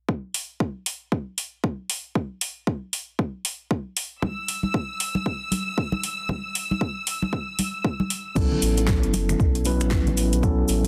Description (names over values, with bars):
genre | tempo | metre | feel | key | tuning
deep house | 116 BPM | 4/4 | swing 60% on 16ths | unclear | A4 = 441 Hz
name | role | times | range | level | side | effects
electronic kick drum | drums | 0.1-10.6 s | none | -27 LUFS | equal | high-pass filter on kick
deep house drum kit | drums | 0.3-10.9 s | crash cymbal, finger snaps, hi-hat, snare drum | -30 LUFS | equal | none
congas | percussion | 4.2-10.9 s | none | -31 LUFS | equal | none
bright studio violin section | texture | 4.2-8.4 s | E6 | -33 LUFS | equal | sidechain pumping
mellow tine electric piano | stabs | 8.4-10.9 s | F#3 to B4 | -27 LUFS | equal | sidechain pumping
sub bass with octave | bass | 8.4-10.9 s | F#1 to B1 | -26 LUFS | equal | none
cabasa | percussion | 8.4-10.9 s | none | -37 LUFS | equal | none
warbly tape-like pad | texture | 8.4-10.9 s | none | barely audible | none | none
room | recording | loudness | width
digital ambience | dense, heavily limited modern master | -26 LUFS | mono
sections
0.1-8.4 A section; 8.4-10.9 B section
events
none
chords
0.1 N.C.; 8.4 B9sus4